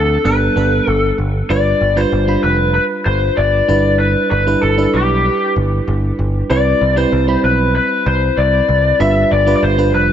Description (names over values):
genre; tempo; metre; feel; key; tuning
1980s-style pop; 96 BPM; 4/4; straight; unclear; A4 = 440 Hz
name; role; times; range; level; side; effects
lead guitar through a small cranked amp; melody; 0.0-10.1 s; G4 to E5; -16 LUFS; left 3 dB; overdrive
FM electric piano; accompaniment; 0.0-10.1 s; F3 to B5; -18 LUFS; right 3 dB; chorus
picked electric bass; bass; 0.0-10.1 s; F1 to D2; -17 LUFS; equal; none
room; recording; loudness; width
light reverb; nothing above 7.8 kHz; -12 LUFS; side -9 dB against mid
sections
0.0-1.5 A section; 1.5-10.1 B section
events
none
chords
0.2 Gadd9; 1.5 G7; 3.7 Em7/G; 6.5 Cmaj7; 9.0 G7